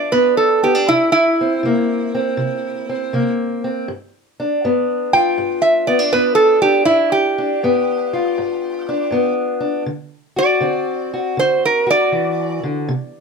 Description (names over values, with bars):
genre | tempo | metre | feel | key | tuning
acoustic country blues, solo or duo | 80 BPM | 4/4 | swing 67% on 8ths | G mixolydian | A4 = 441 Hz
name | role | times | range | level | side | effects
metal-body resonator slide guitar | melody | 0.0-12.6 s | E4 to G5 | -16 LUFS | right 2 dB | plate reverb
fingerpicked steel-string acoustic guitar | accompaniment | 0.0-13.2 s | G2 to F#4 | -18 LUFS | left 2 dB | none
room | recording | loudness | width
moderate studio reverb, RT60 0.7 s | none | -15 LUFS | side -5 dB against mid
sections
0.0-13.2 A section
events
none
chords
0.0 G7; 0.9 C7; 3.9 G7; 9.9 D7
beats
0.13 | 0.88 1.63 2.38 3.12 | 3.88 4.62 5.37 6.12 | 6.87 7.62 8.37 9.12 | 9.87 10.62 11.37 12.12 | 12.87